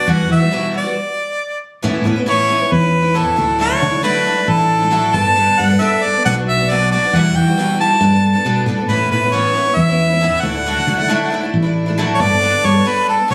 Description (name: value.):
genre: rock.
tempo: 136 BPM.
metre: 4/4.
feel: straight.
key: D major.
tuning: A4 = 441 Hz.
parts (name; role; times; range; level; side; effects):
warm harmonica; melody; 0.0-13.3 s; A4 to A5; -18 LUFS; equal; none.
picked twelve-string acoustic guitar; accompaniment; 0.0-13.3 s; E2 to A4; -22 LUFS; equal; subtle chorus.
fingered electric bass; bass; 0.1-13.3 s; G1 to E3; -20 LUFS; equal; none.
room: light reverb.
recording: recorded on a phone in the room, club reverb.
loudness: -15 LUFS.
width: mono.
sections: 0.0-1.8 A section; 1.8-13.3 A section.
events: stop 1.0-1.8.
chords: 0.1 Emadd9; 1.0 N.C.; 1.8 Aadd9; 3.4 Dadd9; 5.1 Gadd9; 6.2 Bm; 7.1 Emadd9; 8.0 Gadd9; 8.9 Aadd9; 10.4 Dadd9; 12.2 Gadd9.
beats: | 0.07 0.51 0.95 1.39 | 1.84 2.28 2.72 3.16 | 3.60 4.04 4.48 4.92 | 5.37 5.81 6.25 6.69 | 7.13 7.57 8.01 8.45 | 8.89 9.34 9.78 10.22 | 10.66 11.10 11.54 11.98 | 12.42 12.86 13.30.